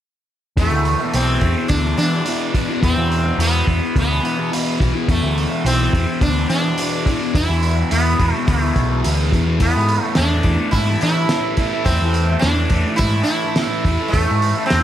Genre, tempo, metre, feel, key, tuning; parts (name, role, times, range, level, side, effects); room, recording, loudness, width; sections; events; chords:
psychedelic rock; 106 BPM; 4/4; straight; A4 = 440 Hz
sitar; melody; 0.6-14.8 s; A3 to E4; -21 LUFS; right 2 dB; tape echo
fuzz guitar; riff; 0.6-14.8 s; E2 to A3; -21 LUFS; left 2 dB; distortion, phaser
hollow-body short-scale picked electric bass; bass; 0.6-14.8 s; B1 to E3; -19 LUFS; equal
cloth-damped thuddy drum kit; drums; 0.6-14.8 s; hi-hat, kick drum, snare drum; -22 LUFS; equal
light reverb, small room ambience; -15 LUFS; side -11 dB against mid
0.6-14.8 A section
0.6 E5; 9.6 A5/E